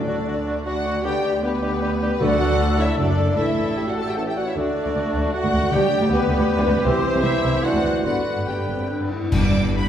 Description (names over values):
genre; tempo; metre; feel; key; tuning
classical, dramatic, fast romantic movement for symphony orchestra; 139-160 BPM; 3/4; rubato; D major, G major from 6.9 s; A4 = 440 Hz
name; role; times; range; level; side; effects
rich symphonic violin section; melody; 0.0-9.9 s; G3 to D6; -37 LUFS; left 2 dB; none
concert flute; second line; 0.0-8.9 s; G4 to F#5; -28 LUFS; left 1 dB; none
dark clarinet; second line; 0.0-8.9 s; B3 to A4; -29 LUFS; left 2 dB; none
rich studio violin section; second line; 0.0-9.9 s; B4 to A5; -27 LUFS; left 1 dB; none
rich symphonic viola section; accompaniment; 0.0-9.9 s; B3 to A4; -31 LUFS; right 2 dB; none
dark French horn section; sustained chords; 0.0-9.3 s; B3 to A4; -32 LUFS; left 2 dB; none
rich symphonic cello section; bass; 0.0-9.9 s; C2 to A2; -26 LUFS; right 1 dB; none
warm symphonic double bass section; bass; 0.0-9.9 s; F#1 to D2; -28 LUFS; right 2 dB; none
timpani; percussion; 0.0-2.7, 5.7-6.2, 9.3-9.9 s; G2 to D3; -25 LUFS; left 1 dB; none
clear oboe; second line; 0.1-9.1 s; F#4 to C5; -31 LUFS; equal; none
dark bassoon; accompaniment; 0.1-9.1 s; D3 to G4; -30 LUFS; equal; none
warm trombone section; sustained chords; 1.0-8.2 s; D3 to B3; -31 LUFS; right 2 dB; none
cymbal swell, clash cymbals and concert bass drum; percussion; 6.9-9.9 s; none; -26 LUFS; equal; none
room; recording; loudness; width
wet recital hall reverb, RT60 1.5 s; recorded in a church or concert hall; -18 LUFS; side -9 dB against mid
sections
0.0-9.3 A section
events
band accent 9.3-9.7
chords
0.0 D; 1.0 G/D; 2.2 D; 3.0 D/F#; 3.4 Asus4; 4.2 A; 4.6 D; 5.7 G/D; 6.9 C; 7.6 D9; 8.1 G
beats
0.27 0.66 | 1.05 1.43 1.81 | 2.21 2.60 2.98 | 3.37 3.77 4.17 | 4.56 4.96 5.34 | 5.73 6.11 6.48 | 6.86 7.24 7.64 | 8.05 8.48 8.90 | 9.32 9.74